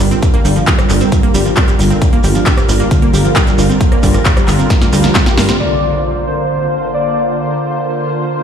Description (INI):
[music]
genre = uplifting trance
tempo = 134 BPM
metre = 4/4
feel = straight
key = unclear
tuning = A4 = 440 Hz
[part]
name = lush unison pad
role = sustained chords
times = 0.0-8.4 s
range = D3 to C5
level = -16 LUFS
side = equal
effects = chorus, phaser, sidechain pumping
[part]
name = wide unison pluck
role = arpeggios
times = 0.0-5.6 s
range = G2 to G4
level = -18 LUFS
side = right 4 dB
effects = sidechain pumping, ping-pong delay
[part]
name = tight sequencer bass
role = bass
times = 0.0-5.5 s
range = G1 to G2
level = -14 LUFS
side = equal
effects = sidechain pumping
[part]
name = big-room dance drum kit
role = drums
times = 0.0-5.6 s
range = handclaps, hi-hat, rim click, snare drum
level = -18 LUFS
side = equal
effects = none
[part]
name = shekere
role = percussion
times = 0.0-5.6 s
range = none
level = -26 LUFS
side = right 5 dB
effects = none
[part]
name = electronic kick drum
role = drums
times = 0.2-5.2 s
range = none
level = -13 LUFS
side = equal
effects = none
[part]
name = warm velvety synth lead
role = second line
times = 5.6-7.5 s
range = C5 to D5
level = -18 LUFS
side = left 2 dB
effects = chorus, ping-pong delay
[part]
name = impact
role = sound effects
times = 5.6-7.4 s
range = none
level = -24 LUFS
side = equal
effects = none
[sound]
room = light reverb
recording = played on a big sound system in a bare room, stone room reverb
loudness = -10 LUFS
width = side -8 dB against mid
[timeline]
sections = 0.0-5.6 A section; 5.6-8.4 B section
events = filter sweep on analog synth pad 0.0-5.6; drum fill 4.7-5.6; band accent 5.5; impact 5.6-7.4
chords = 0.0 Gm7; 5.6 Bbadd9